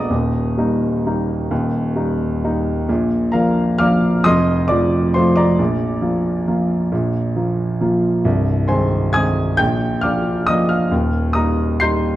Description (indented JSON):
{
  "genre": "classical, piano waltz",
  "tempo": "133 BPM",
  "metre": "3/4",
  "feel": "uneven beats, rubato",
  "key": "Eb major",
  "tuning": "A4 = 440 Hz",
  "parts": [
    { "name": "warm grand piano", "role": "solo", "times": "0.0-12.2 s", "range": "C1 to C7", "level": "-15 LUFS", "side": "equal", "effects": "none" }
  ],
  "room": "moderate recital hall reverb, RT60 1.4 s",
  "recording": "dark, warm production",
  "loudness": "-15 LUFS",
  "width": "side -14 dB against mid",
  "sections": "0.0-12.2 A section",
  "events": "none",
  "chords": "0.1 Eb; 2.9 Bb; 4.3 F7; 5.6 Bb; 8.2 Ab/C; 9.6 Bb; 10.9 Eb"
}